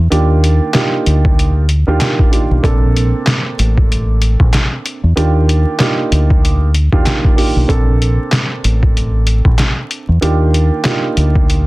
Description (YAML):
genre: hip hop, boom-bap hip-hop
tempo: 95 BPM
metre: 4/4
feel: swing 57% on 16ths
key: unclear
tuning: A4 = 440 Hz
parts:
  - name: deep dub fingered electric bass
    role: bass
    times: 0.0-11.7 s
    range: A1 to E2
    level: -12 LUFS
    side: equal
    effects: none
  - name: dark upright piano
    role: accompaniment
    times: 0.1-11.7 s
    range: C3 to A4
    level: -18 LUFS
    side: right 3 dB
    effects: cassette tape, high-pass filter, low-pass filter
  - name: trip hop sampler-style drum kit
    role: drums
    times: 0.1-11.7 s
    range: handclaps, hi-hat, kick drum, snare drum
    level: -13 LUFS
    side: equal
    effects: none
room: little or no reverb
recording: dense, heavily limited modern master, vinyl crackle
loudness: -11 LUFS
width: side -20 dB against mid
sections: 0.0-11.7 A section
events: none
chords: 0.1 Ebmaj7; 2.6 Bbmaj9; 5.2 Ebmaj7; 7.7 Bbmaj9; 10.2 Ebmaj7